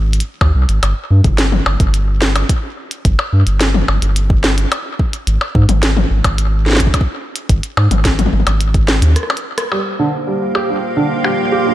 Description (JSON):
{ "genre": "IDM", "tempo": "108 BPM", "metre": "4/4", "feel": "straight", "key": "unclear", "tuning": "A4 = 439 Hz", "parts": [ { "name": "round analog bass", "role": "bass", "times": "0.0-9.2 s", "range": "G1 to Ab2", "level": "-13 LUFS", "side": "equal", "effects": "none" }, { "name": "glitchy drum kit", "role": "drums", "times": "0.1-11.4 s", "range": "hi-hat, percussion blips, rim click, snare drum, toms", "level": "-18 LUFS", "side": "left 1 dB", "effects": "low-pass filter on hats, low-pass filter on perc, low-pass filter on toms, low-pass filter on snare, low-pass filter on room, analog delay" }, { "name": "electronic kick drum", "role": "drums", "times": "0.4-8.9 s", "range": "none", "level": "-15 LUFS", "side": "equal", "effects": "none" }, { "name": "icy glass pad", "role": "sustained chords", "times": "10.2-11.7 s", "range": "Bb3 to G5", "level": "-19 LUFS", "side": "right 2 dB", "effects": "chorus, built-in reverb, vintage 12-bit sampler grit" }, { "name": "felt-muted upright piano", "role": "arpeggios", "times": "9.7-11.7 s", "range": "D3 to G4", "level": "-17 LUFS", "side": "right 2 dB", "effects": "low-pass filter, dub echo" }, { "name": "bubbling stepped-filter texture", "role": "texture", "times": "9.7-11.7 s", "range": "C5", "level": "-26 LUFS", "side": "equal", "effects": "chorus, built-in reverb" } ], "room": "light reverb", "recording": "echo-heavy mix", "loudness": "-12 LUFS", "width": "side -14 dB against mid", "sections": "0.0-9.7 A section; 9.7-11.7 B section", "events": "break 9.2-9.7; drum fill 9.2-9.7; band accent 9.6; filter sweep on felt piano 9.7-11.7", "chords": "0.0 Ab; 0.8 N.C.; 5.3 Ab5; 9.7 Gm7", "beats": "0.27 | 0.83 1.38 1.94 2.49 | 3.05 3.61 4.16 4.72 | 5.27 5.83 6.38 6.94 | 7.49 8.05 8.61 9.16 | 9.72 10.27 10.83 11.38" }